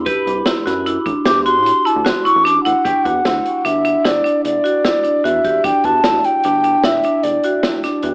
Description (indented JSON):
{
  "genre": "progressive instrumental, band music in an uneven meter",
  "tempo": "151 BPM",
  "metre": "7/4",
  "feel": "straight",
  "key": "unclear",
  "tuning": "A4 = 440 Hz",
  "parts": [
    { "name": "semi-hollow electric guitar", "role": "second line", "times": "0.0-8.1 s", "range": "G4 to C5", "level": "-26 LUFS", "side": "equal", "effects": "phaser" },
    { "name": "marimba with hard mallets", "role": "arpeggios", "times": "0.0-8.1 s", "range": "D4 to G4", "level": "-19 LUFS", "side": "right 1 dB", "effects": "none" },
    { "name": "rubbery square bass", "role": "bass", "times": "0.0-8.1 s", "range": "E1 to A2", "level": "-26 LUFS", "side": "equal", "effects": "none" },
    { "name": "open jazz drum kit", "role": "drums", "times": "0.1-8.1 s", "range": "hi-hat, kick drum, snare drum", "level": "-21 LUFS", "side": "equal", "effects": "none" },
    { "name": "mellow baroque flute", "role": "melody", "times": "1.3-7.6 s", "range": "D5 to D6", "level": "-15 LUFS", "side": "equal", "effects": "tape echo" }
  ],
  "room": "moderate studio reverb, RT60 0.6 s",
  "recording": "AM radio sound",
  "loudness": "-13 LUFS",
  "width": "side -27 dB against mid",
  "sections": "0.0-2.9 A section; 2.9-8.1 B section",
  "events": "flute solo 0.0-2.9",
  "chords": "0.0 Am11; 2.9 Em7"
}